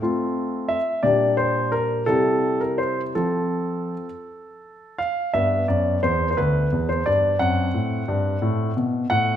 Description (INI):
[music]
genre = classical-period piano sonatina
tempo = 54-60 BPM (dotted quarters)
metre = 6/8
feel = rubato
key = F major, G major from 5.3 s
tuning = A4 = 440 Hz
[part]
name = clear grand piano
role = solo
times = 0.0-9.4 s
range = D2 to F#5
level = -20 LUFS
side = equal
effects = none
[sound]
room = wet recital hall reverb, RT60 1.4 s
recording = none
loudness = -20 LUFS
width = side -10 dB against mid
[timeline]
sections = 0.0-5.3 A section; 5.3-9.4 B section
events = none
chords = 0.0 F/A; 1.0 Gm/Bb; 2.1 C; 3.2 F; 5.3 G; 7.4 F#dim